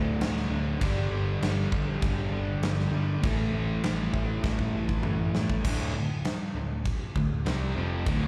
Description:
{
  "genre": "hard rock",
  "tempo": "99 BPM",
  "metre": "4/4",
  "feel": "straight",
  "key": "unclear",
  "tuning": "A4 = 440 Hz",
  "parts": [
    { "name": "cranked stack guitar", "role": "riff", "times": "0.0-8.3 s", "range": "D2 to C4", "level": "-38 LUFS", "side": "equal", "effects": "overdrive, slapback echo" },
    { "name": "crunchy overdriven guitar", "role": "riff", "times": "0.0-8.3 s", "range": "D2 to C4", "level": "-37 LUFS", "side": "equal", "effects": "slapback echo" },
    { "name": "distorted electric guitar", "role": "riff", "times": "0.0-8.3 s", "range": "D2 to C4", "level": "-38 LUFS", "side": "equal", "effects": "distortion, slapback echo" },
    { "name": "picked electric bass", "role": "bass", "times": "0.0-8.3 s", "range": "D1 to A2", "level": "-33 LUFS", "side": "equal", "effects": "none" },
    { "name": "huge arena drum kit", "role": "drums", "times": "0.2-8.2 s", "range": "crash cymbal, kick drum, snare drum, toms", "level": "-33 LUFS", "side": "equal", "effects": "none" }
  ],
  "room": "light reverb",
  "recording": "live gig heard through the venue's PA, club reverb",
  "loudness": "-28 LUFS",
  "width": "mono",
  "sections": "0.0-5.6 A section; 5.6-8.3 B section",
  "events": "drum fill 4.4-5.6",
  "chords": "0.0 D5; 0.8 G5; 3.2 A5; 5.6 Dm",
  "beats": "0.21 | 0.81 1.42 2.02 2.62 | 3.23 3.83 4.43 5.04 | 5.64 6.25 6.85 7.46 | 8.07"
}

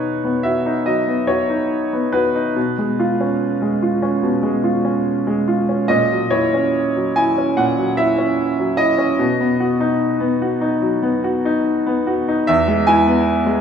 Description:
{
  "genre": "classical, romantic character piece for solo piano",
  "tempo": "72 BPM",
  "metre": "4/4",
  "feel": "rubato",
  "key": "B major",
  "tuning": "A4 = 440 Hz",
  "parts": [
    { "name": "bright grand piano", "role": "solo", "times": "0.0-13.6 s", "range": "E2 to G#5", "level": "-16 LUFS", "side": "equal", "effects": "none" }
  ],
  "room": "wet recital hall reverb, RT60 1.5 s",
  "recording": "recorded in a church or concert hall",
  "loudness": "-16 LUFS",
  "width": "side -7 dB against mid",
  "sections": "0.0-13.6 A section",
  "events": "none",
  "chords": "0.0 B; 2.6 C#7/B; 5.9 F#7/A#; 9.2 B; 12.5 E",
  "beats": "0.03 0.86 1.71 | 2.56 3.42 4.23 5.06 | 5.91 6.75 7.58 8.38 | 9.20 10.01 10.83 11.67 | 12.49 13.28"
}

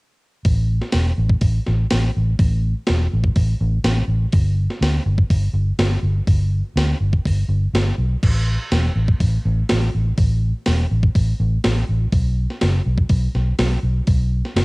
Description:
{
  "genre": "rock, shoegaze and dream pop",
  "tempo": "123 BPM",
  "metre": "4/4",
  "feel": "straight",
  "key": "unclear",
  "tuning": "A4 = 440 Hz",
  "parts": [
    { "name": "gated 80s digital drum machine", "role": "drums", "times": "0.4-14.6 s", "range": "crash cymbal, hi-hat, kick drum, snare drum", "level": "-20 LUFS", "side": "equal", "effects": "gated reverb, gated reverb snare, cassette tape" },
    { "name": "vintage muted fingered electric bass", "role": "bass", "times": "0.5-14.6 s", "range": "E1 to D2", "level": "-18 LUFS", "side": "equal", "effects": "none" }
  ],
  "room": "digital ambience",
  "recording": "home recording on cassette",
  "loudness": "-16 LUFS",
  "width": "side -26 dB against mid",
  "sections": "0.5-14.6 A section",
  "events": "none",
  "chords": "none",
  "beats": "| 0.46 0.94 1.43 1.91 | 2.40 2.88 3.37 3.85 | 4.34 4.82 5.31 5.79 | 6.28 6.77 7.25 7.74 | 8.23 8.72 9.21 9.69 | 10.18 10.67 11.15 11.64 | 12.13 12.62 13.10 13.59 | 14.08 14.56"
}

